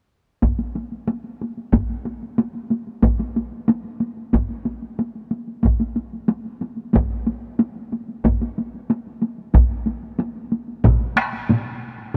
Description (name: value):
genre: japanese traditional, taiko drum ensemble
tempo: 92 BPM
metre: 4/4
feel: straight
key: none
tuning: none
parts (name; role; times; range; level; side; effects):
- taiko ensemble; percussion; 0.4-12.2 s; none; -24 LUFS; equal; none
- taiko ensemble; percussion; 0.4-11.0 s; none; -22 LUFS; equal; none
- taiko ensemble; percussion; 10.8-11.6 s; none; -26 LUFS; equal; none
- taiko ensemble; percussion; 10.8-11.6 s; none; -26 LUFS; equal; none
room: light reverb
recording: none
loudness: -23 LUFS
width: mono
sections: 0.4-10.8 A section; 10.8-12.2 B section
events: none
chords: none